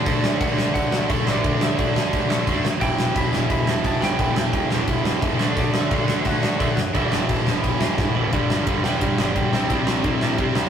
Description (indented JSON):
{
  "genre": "punk rock",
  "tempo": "174 BPM",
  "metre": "4/4",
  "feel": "straight",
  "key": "E minor",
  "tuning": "A4 = 440 Hz",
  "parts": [
    { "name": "cranked stack guitar", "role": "riff", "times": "0.0-10.7 s", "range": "E2 to D4", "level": "-29 LUFS", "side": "left 4 dB", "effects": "overdrive" },
    { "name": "heavy high-gain guitar", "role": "riff", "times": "0.0-10.7 s", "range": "G2 to G4", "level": "-30 LUFS", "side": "right 1 dB", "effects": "distortion" },
    { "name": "tight distorted guitar", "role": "riff", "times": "0.0-10.7 s", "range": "E2 to D4", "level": "-25 LUFS", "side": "right 5 dB", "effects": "distortion" },
    { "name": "lightly driven lead guitar", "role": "melody", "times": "0.1-10.7 s", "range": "D4 to B5", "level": "-30 LUFS", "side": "right 1 dB", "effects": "none" },
    { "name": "fuzz picked electric bass", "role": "bass", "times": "0.1-10.7 s", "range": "E1 to C3", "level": "-31 LUFS", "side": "equal", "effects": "none" },
    { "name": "big rock drum kit", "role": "drums", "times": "0.1-10.6 s", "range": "crash cymbal, kick drum, ride cymbal, snare drum, toms", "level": "-22 LUFS", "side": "left 1 dB", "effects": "none" }
  ],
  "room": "moderate booth ambience, RT60 0.2 s",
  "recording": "rough rehearsal-room recording",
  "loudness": "-18 LUFS",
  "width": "side -8 dB against mid",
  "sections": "0.0-8.3 A section; 8.3-10.7 B section",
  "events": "drum fill 8.0-8.3",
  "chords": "0.0 D; 2.8 Em; 5.4 D; 6.9 Em; 8.3 G; 9.5 C",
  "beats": "| 0.06 0.41 0.75 1.10 | 1.44 1.78 2.13 2.47 | 2.82 3.16 3.50 3.85 | 4.19 4.54 4.88 5.23 | 5.57 5.92 6.26 6.60 | 6.95 7.29 7.64 7.98 | 8.32 8.67 9.01 9.36 | 9.70 10.05 10.39"
}